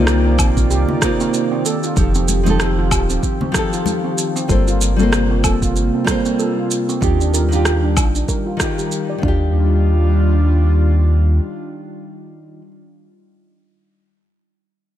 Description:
sunset chillout; 95 BPM; 4/4; swing 57% on 16ths; Eb lydian; A4 = 440 Hz
nylon-string guitar; accompaniment; 0.0-12.7 s; C3 to D5; -22 LUFS; moving between left 5 dB and right 5 dB; auto-pan, tape echo
airy breathy pad; sustained chords; 0.0-12.7 s; C3 to D5; -23 LUFS; equal; chorus, vintage 12-bit sampler grit
steel pan; arpeggios; 0.0-9.8 s; C4 to D5; -25 LUFS; right 4 dB; low-pass filter, tape echo
round analog bass; bass; 0.0-11.4 s; Eb1 to Eb2; -16 LUFS; equal
electronic rim click, shaker and woodblock; drums; 0.1-9.1 s; -23 LUFS; right 1 dB
electronic kick drum; drums; 0.4-9.4 s; -20 LUFS; equal
congas; percussion; 0.9-4.0 s; -25 LUFS; left 3 dB
light reverb, small room ambience; -14 LUFS; side -11 dB against mid
0.0-9.5 A section; 9.5-12.1 B section
filter sweep on analog synth pad 0.0-9.5; filter sweep on steel pan 0.0-9.5
0.0 Cm11; 1.6 F9; 4.5 Gm11; 7.0 Ebmaj9
0.07 0.70 1.33 | 1.96 2.60 3.23 3.86 | 4.49 5.12 5.75 6.38 | 7.02 7.65 8.28 8.91 | 9.54 10.18 10.81 11.44

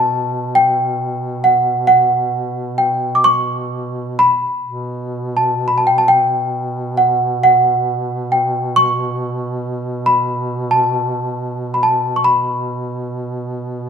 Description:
caucasian folk, Caucasian lament; 66 BPM; 3/4; uneven beats, rubato; A4 = 440 Hz
small celesta; melody; 0.0-13.9 s; F#5 to D6; -14 LUFS; equal
warm duduk; drone; 0.0-13.9 s; B2; -23 LUFS; right 2 dB
light reverb; minimal, uncompressed stereo recording; -14 LUFS; side -7 dB against mid
0.0-13.9 A section
0.10 0.97 | 1.85 2.76 3.70 | 4.64 5.58 6.49 | 7.38 8.28 9.16 | 10.03 10.91 11.80 | 12.68 13.58

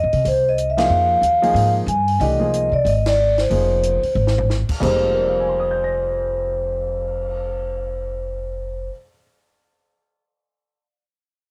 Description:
modal jazz; 185 BPM; 4/4; swing 61% on 8ths; F dorian; A4 = 440 Hz
vibraphone with soft mallets; melody; 0.0-8.9 s; C5 to Ab5; -21 LUFS; equal
upright bass; bass; 0.0-8.9 s; F1 to C3; -25 LUFS; equal
compact cocktail drum kit; drums; 0.1-7.3 s; crash cymbal, cymbal swell, hi-hat, kick drum, ride cymbal, snare drum, toms; -34 LUFS; equal
warm upright piano; accompaniment; 0.8-9.2 s; F2 to Bb6; -28 LUFS; equal
small room ambience; home recording on cassette; -19 LUFS; mono
0.0-4.8 A section; 4.8-7.4 B section
band accent 0.7, 3.0; drum fill 4.2-4.5
0.0 Fm11
0.26 0.58 | 0.91 1.23 1.56 1.88 | 2.21 2.53 2.86 3.18 | 3.51 3.83 4.16 4.48 | 4.81 5.13 5.46 5.78 | 6.11 6.43 6.76 7.08

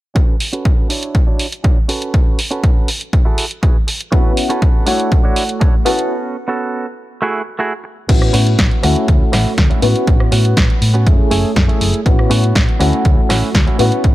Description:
filtered disco house; 121 BPM; 4/4; straight; A major; A4 = 440 Hz
direct-recorded clean electric guitar; riff; 0.1-14.1 s; A3 to C#5; -22 LUFS; right 3 dB; sidechain pumping, low-pass filter
electronic kick drum; drums; 0.2-14.1 s; -13 LUFS; equal
punchy analog drum machine; drums; 0.2-14.1 s; crash cymbal, hi-hat, rim click, snare drum; -20 LUFS; equal; sidechain pumping on hats, sidechain pumping on cymbals
dark grand piano; accompaniment; 4.1-14.1 s; A3 to C#5; -18 LUFS; left 1 dB; phaser, sidechain pumping, low-pass filter
hollow-body short-scale fingered electric bass; bass; 8.1-14.1 s; F#1 to A2; -16 LUFS; equal; tube saturation, sidechain pumping, low-pass filter
little or no reverb; -12 LUFS; side -16 dB against mid
0.2-8.1 A section; 8.1-14.1 B section
filter sweep 0.2-8.1, 8.1-14.1; break 6.1-8.1
0.2 A69; 0.9 Dmaj9; 1.9 A69; 3.1 F#m9; 4.1 A69; 4.9 Dmaj9; 5.9 A69; 7.1 F#m9; 8.1 A69; 8.8 Dmaj9; 9.8 A69; 11.1 F#m9; 12.1 A69; 12.8 Dmaj9
| 0.16 0.65 1.15 1.65 | 2.14 2.64 3.13 3.63 | 4.12 4.62 5.12 5.61 | 6.11 6.60 7.10 7.60 | 8.09 8.59 9.08 9.58 | 10.07 10.57 11.07 11.56 | 12.06 12.55 13.05 13.55 | 14.04

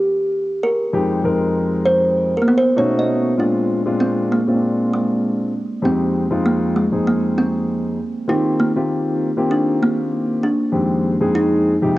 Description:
hip hop; 98 BPM; 4/4; swing 58% on 16ths; F dorian; A4 = 440 Hz
kalimba; melody; 0.0-11.9 s; Ab3 to D#5; -19 LUFS; right 1 dB; cassette tape
dark baby grand piano; accompaniment; 0.9-12.0 s; F2 to Bb4; -19 LUFS; left 1 dB; cassette tape
moderate lush hall reverb, RT60 3.0 s; home recording on cassette; -16 LUFS; side -17 dB against mid
0.0-3.4 A section; 3.4-12.0 B section
kalimba solo 0.0-3.4
0.0 Eb (rootless); 0.9 Fm7; 2.8 B9; 3.4 Bb7; 5.8 Fm7; 8.3 Eb69; 10.7 Fm7
0.32 | 0.93 1.55 2.16 2.77 | 3.38 4.00 4.61 5.22 | 5.83 6.44 7.06 7.67 | 8.28 8.89 9.51 10.12 | 10.73 11.34 11.95

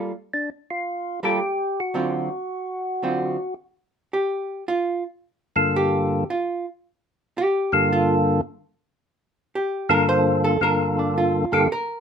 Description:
jazz; 111 BPM; 4/4; swing 68% on 8ths; A4 = 440 Hz
archtop guitar, miked and amplified; accompaniment; 0.0-12.0 s; D3 to C5; -23 LUFS; right 2 dB
percussive tonewheel organ; melody; 0.3-11.7 s; G2 to A4; -21 LUFS; left 1 dB; slow rotary speaker, overdrive
light reverb; minimal, uncompressed stereo recording; -20 LUFS; side -7 dB against mid
0.0-4.1 A section; 4.1-12.0 B section
hollow-body jazz guitar solo 4.1-12.0
0.0 Gm9; 1.9 D7#9; 4.1 Gm9
0.32 0.86 1.40 | 1.94 2.48 3.03 3.57 | 4.11 4.65 5.19 5.73 | 6.28 6.82 7.36 7.90 | 8.44 8.98 9.53 10.07 | 10.61 11.15 11.69

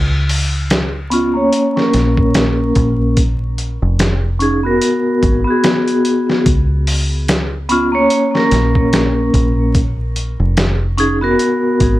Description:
trip hop; 73 BPM; 4/4; swing 58% on 16ths; A4 = 441 Hz
deep dub fingered electric bass; bass; 0.0-12.0 s; E#1 to C#2; -17 LUFS; equal; transformer saturation
trip hop sampler-style drum kit; drums; 0.3-12.0 s; hi-hat, kick drum, snare drum; -17 LUFS; equal
vibraphone with medium hard mallets; accompaniment; 1.1-12.0 s; A#3 to C#5; -14 LUFS; equal; tremolo, low-pass filter, tape echo
digital ambience; dry, gritty hardware recording, vinyl crackle; -12 LUFS; side -16 dB against mid
0.0-12.0 A section
filter sweep on vibraphone 0.0-12.0
0.0 C#7(no3); 1.5 A#m; 3.2 N.C.; 4.8 G#m7; 6.5 N.C.; 8.1 A#m; 9.7 N.C.; 11.4 G#m7
0.70 1.53 2.35 | 3.17 3.99 4.81 5.64 | 6.46 7.28 8.10 8.92 | 9.74 10.57 11.39

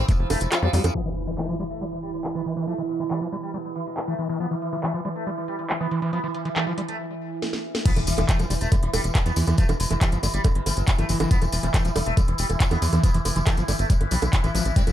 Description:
psychedelic trance; 139 BPM; 4/4; straight; E phrygian; A4 = 440 Hz
sitar; melody; 0.0-14.9 s; B2 to C4; -31 LUFS; left 1 dB; phaser, sidechain pumping, ping-pong delay
overtone-sweeping drone; sustained chords; 0.0-14.9 s; E3 to E4; -32 LUFS; right 3 dB; chorus, built-in reverb, sidechain pumping
tight sequencer bass; bass; 0.0-0.9, 8.0-14.9 s; E1 to F2; -24 LUFS; equal
screaming distorted acid line; riff; 0.1-14.9 s; E3 to F4; -29 LUFS; moving between left 5 dB and right 4 dB; distortion, chorus, auto-pan, cassette tape, sidechain pumping, ping-pong delay
drum and bass drum kit; drums; 0.1-14.9 s; bongos, crash cymbal, handclaps, hi-hat, snare drum; -29 LUFS; right 2 dB
electronic kick drum; drums; 0.1-0.2, 7.9-14.8 s; -20 LUFS; equal
tambourine; percussion; 0.1-0.9, 7.9-14.9 s; -34 LUFS; left 5 dB
impact; sound effects; 0.9-2.7, 7.9-9.6 s; -33 LUFS; equal
light reverb, digital ambience; low-pass filter; -21 LUFS; side -12 dB against mid
0.9-7.9 A section; 7.9-14.9 B section
kick drops out 0.5-0.9; impact 0.9-2.7, 7.9-9.6; filter sweep on acid bass 0.9-7.9; filter sweep on synth drone 0.9-7.9; filter sweep 0.9-7.9; break 7.0-7.9; drum fill 7.4-7.9; drop 7.9-14.9
0.0 Fmaj7sus2; 0.9 E5
0.09 0.52 | 0.95 1.38 1.81 2.24 | 2.68 3.11 3.54 3.97 | 4.40 4.83 5.27 5.70 | 6.13 6.56 6.99 7.42 | 7.86 8.29 8.72 9.15 | 9.58 10.01 10.45 10.88 | 11.31 11.74 12.17 12.60 | 13.04 13.47 13.90 14.33 | 14.76

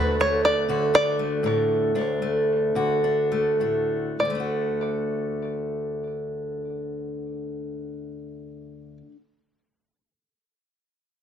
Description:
folk; 98-123 BPM; 4/4; straight; D major; A4 = 440 Hz
open-back banjo; melody; 0.0-9.0 s; B4 to D5; -24 LUFS; equal; plate reverb, digital delay
fingerpicked steel-string acoustic guitar; accompaniment; 0.0-9.2 s; D2 to F#4; -24 LUFS; equal; plate reverb
light reverb; dense, heavily limited modern master; -22 LUFS; side -8 dB against mid
0.0-4.2 A section; 4.2-9.1 B section
slowing down 0.0-4.2
0.0 D
0.43 0.93 1.43 | 1.95 2.48 3.03 3.60 | 4.20 4.82 5.43 6.04 | 6.65 7.26 7.88 8.49

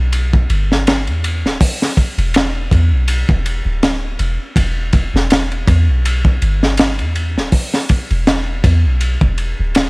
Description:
trip hop; 81 BPM; 4/4; swing 56% on 16ths; E minor; A4 = 440 Hz
soft 808-style bass; bass; 0.0-9.9 s; D1 to E2; -16 LUFS; equal
crunchy breakbeat drum kit; drums; 0.1-9.9 s; hi-hat, kick drum, ride cymbal, snare drum; -15 LUFS; equal
little or no reverb; vinyl crackle; -13 LUFS; side -29 dB against mid
0.0-9.9 A section
0.12 0.86 | 1.60 2.35 3.08 3.83 | 4.57 5.31 6.05 6.79 | 7.53 8.27 9.01 9.75

